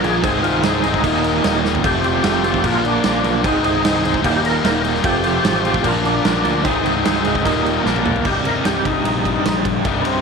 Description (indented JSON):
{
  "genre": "classic rock",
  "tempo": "150 BPM",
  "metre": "4/4",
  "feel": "straight",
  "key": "unclear",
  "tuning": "A4 = 440 Hz",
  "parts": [
    { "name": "overdriven tonewheel organ", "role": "melody", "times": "0.0-10.2 s", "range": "B3 to Bb4", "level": "-22 LUFS", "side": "left 1 dB", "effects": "slow rotary speaker, chorus vibrato" },
    { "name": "reed electric piano", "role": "accompaniment", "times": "0.0-8.2 s", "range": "D4 to C5", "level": "-28 LUFS", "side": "right 12 dB", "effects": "none" },
    { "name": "cranked stack guitar", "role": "riff", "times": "0.0-10.2 s", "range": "C2 to Bb3", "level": "-22 LUFS", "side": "right 12 dB", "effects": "overdrive, tremolo" },
    { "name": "overdriven electric guitar", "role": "riff", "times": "0.0-10.2 s", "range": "C2 to Bb4", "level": "-20 LUFS", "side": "left 13 dB", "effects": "none" },
    { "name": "growling picked electric bass", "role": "bass", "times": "0.0-10.2 s", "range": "C1 to D2", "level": "-25 LUFS", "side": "left 1 dB", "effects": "overdrive" },
    { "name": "big rock drum kit", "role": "drums", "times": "0.0-10.1 s", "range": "crash cymbal, kick drum, ride cymbal, snare drum, toms", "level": "-22 LUFS", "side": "right 3 dB", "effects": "none" }
  ],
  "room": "small room ambience",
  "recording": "1960s-style stereo with parts hard left and right",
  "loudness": "-15 LUFS",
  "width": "side -5 dB against mid",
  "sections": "0.0-8.3 A section; 8.3-10.2 B section",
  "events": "drum fill 1.6, 7.8-8.3; tonewheel organ solo 8.3-10.2",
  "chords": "0.2 Ab/C; 1.0 Eb; 1.8 Fadd9; 2.6 Bb; 3.4 Ab/C; 4.2 Eb; 5.0 Fadd9; 5.8 Bb; 6.6 Ab/C; 7.4 Eb; 7.8 Bb; 8.3 Cm",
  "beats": "| 0.23 0.64 1.04 1.44 | 1.84 2.24 2.64 3.04 | 3.44 3.84 4.24 4.64 | 5.04 5.45 5.85 6.25 | 6.65 7.05 7.45 7.85 | 8.25 8.65 9.05 9.46 | 9.86"
}